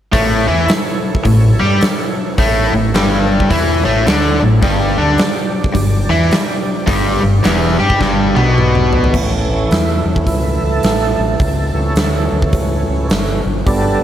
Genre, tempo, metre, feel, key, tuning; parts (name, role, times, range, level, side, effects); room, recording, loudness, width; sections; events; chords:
blues rock power trio and southern rock; 106 BPM; 4/4; swing 62% on 8ths; A mixolydian; A4 = 441 Hz
overdriven tonewheel organ; sustained chords; 0.1-14.0 s; E3 to D#5; -21 LUFS; right 3 dB; slow rotary speaker, chorus vibrato
cranked stack guitar; riff; 0.1-9.1 s; E2 to G4; -14 LUFS; left 1 dB; overdrive
growling fingered electric bass; bass; 0.1-14.0 s; E1 to G2; -18 LUFS; equal; overdrive
huge arena drum kit; drums; 0.1-13.8 s; crash cymbal, hi-hat, kick drum, snare drum, toms; -17 LUFS; equal
moderate lush hall reverb, RT60 2.0 s; big arena sound, faint mains hum; -12 LUFS; side -10 dB against mid
0.1-9.1 A section; 9.1-14.0 B section
drum fill 8.0-9.1; tonewheel organ solo 9.1-14.0
0.1 A; 4.6 G5; 9.1 A